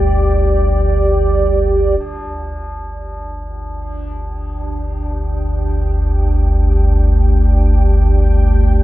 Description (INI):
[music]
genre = dark ambient drone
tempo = free time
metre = none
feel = none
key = unclear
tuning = A4 = 440 Hz
[part]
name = deep dark ambient pad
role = sustained chords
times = 0.0-8.8 s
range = D4 to G5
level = -20 LUFS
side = right 1 dB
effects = chorus, built-in reverb
[part]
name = deep rumbling drone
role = drone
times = 0.0-8.8 s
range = G1 to D2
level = -14 LUFS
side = equal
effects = built-in reverb, wide subtle chorus
[part]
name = tubular bells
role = arpeggios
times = 2.0-8.8 s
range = D4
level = -34 LUFS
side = equal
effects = dub echo
[sound]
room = light reverb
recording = echo-heavy mix, nothing above 7.5 kHz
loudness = -12 LUFS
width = side -16 dB against mid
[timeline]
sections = 0.0-2.0 A section; 2.0-8.8 B section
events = fade-in on ambient pad 2.0-8.8; fade-in on tubular bells 2.0-8.8; filter sweep on synth drone 2.0-8.8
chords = 0.0 G5